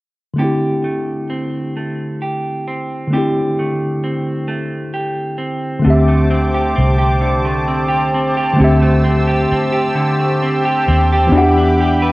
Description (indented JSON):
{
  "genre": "slow six-eight R&B",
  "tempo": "44 BPM (dotted quarters)",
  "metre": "6/8",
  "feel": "straight",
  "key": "unclear",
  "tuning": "A4 = 439 Hz",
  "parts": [
    { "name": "mellow tine electric piano", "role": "accompaniment", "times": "0.3-12.1 s", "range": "D3 to F#5", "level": "-17 LUFS", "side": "left 1 dB", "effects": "medium stereo tremolo" },
    { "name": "clean electric guitar", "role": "second line", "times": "0.4-12.1 s", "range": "D3 to B4", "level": "-19 LUFS", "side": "right 2 dB", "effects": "none" },
    { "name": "warm analog pad", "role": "sustained chords", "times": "5.8-12.1 s", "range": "G4 to E6", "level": "-20 LUFS", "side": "equal", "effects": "chorus, tremolo" },
    { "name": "vintage muted fingered electric bass", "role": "bass", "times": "5.9-12.1 s", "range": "C2 to E2", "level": "-16 LUFS", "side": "equal", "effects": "none" }
  ],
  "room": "moderate echo chamber reverb, RT60 1.8 s",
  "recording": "worn, warbling old tape, cassette tape, warbly pitch drift",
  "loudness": "-14 LUFS",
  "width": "side -20 dB against mid",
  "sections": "0.4-5.9 A section; 5.9-12.1 B section",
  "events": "none",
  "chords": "0.4 D7sus4; 11.3 Em7",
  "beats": "| 0.40 1.76 | 3.12 4.49 | 5.85 7.21 | 8.58 9.94 | 11.31"
}